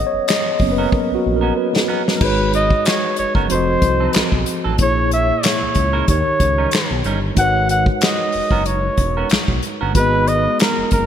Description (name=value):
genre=R&B, neo-soul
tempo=93 BPM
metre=4/4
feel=swing 53% on 16ths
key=G# minor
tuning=A4 = 438 Hz
part: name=mellow tine electric piano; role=accompaniment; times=0.0-11.1 s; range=A#2 to F#5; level=-21 LUFS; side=equal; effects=medium stereo tremolo
part: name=smooth synth bass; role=bass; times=0.0-11.1 s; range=E1 to D#2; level=-21 LUFS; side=equal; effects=none
part: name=unplugged drum kit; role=drums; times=0.3-11.1 s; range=crash cymbal, handclaps, hi-hat, kick drum, snare drum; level=-19 LUFS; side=equal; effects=none
part: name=semi-hollow electric guitar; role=second line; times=0.8-9.9 s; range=Gb3 to A#4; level=-28 LUFS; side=right 7 dB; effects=wide subtle chorus
part: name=warm flugelhorn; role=melody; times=2.2-11.1 s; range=A#4 to F#5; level=-19 LUFS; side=equal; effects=none
room=moderate lush hall reverb, RT60 2.5 s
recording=bright 1980s-style digital production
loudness=-14 LUFS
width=side -9 dB against mid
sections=0.0-2.2 A section; 2.2-11.1 B section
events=tine electric piano solo 0.0-2.2; drum fill 0.9-2.2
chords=0.0 G#m11; 3.5 F7b9; 4.8 A#m7b5; 6.1 D#7; 7.4 G#m11